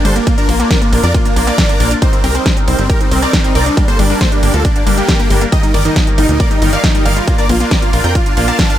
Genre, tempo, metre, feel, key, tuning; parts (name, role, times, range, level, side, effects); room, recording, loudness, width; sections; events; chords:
uplifting trance; 137 BPM; 4/4; straight; A4 = 440 Hz
big supersaw lead; melody; 0.0-8.8 s; Bb3 to A5; -19 LUFS; equal; sidechain pumping, ping-pong delay
plucky unison lead; second line; 0.0-8.8 s; Bb3 to A5; -22 LUFS; equal; wide subtle chorus, cassette tape, sidechain pumping, ping-pong delay
wide unison pluck; arpeggios; 0.0-8.8 s; Bb2 to C5; -20 LUFS; left 3 dB; sidechain pumping, ping-pong delay
filtered supersaw swell; sustained chords; 0.1-8.7 s; G3 to D5; -21 LUFS; right 1 dB; sidechain pumping
tight sequencer bass; bass; 0.1-8.5 s; G1 to F2; -16 LUFS; equal; sidechain pumping
big-room dance drum kit; drums; 0.1-8.8 s; hi-hat, ride cymbal, snare drum; -20 LUFS; equal; sidechain pumping on hats, sidechain pumping on cymbals
electronic kick drum; drums; 0.3-8.7 s; -14 LUFS; equal
digital ambience; -10 LUFS; side -12 dB against mid
0.0-8.8 A section
0.3 Bb; 2.0 Cm7; 3.8 Gm; 5.5 Eb/G; 7.3 Bb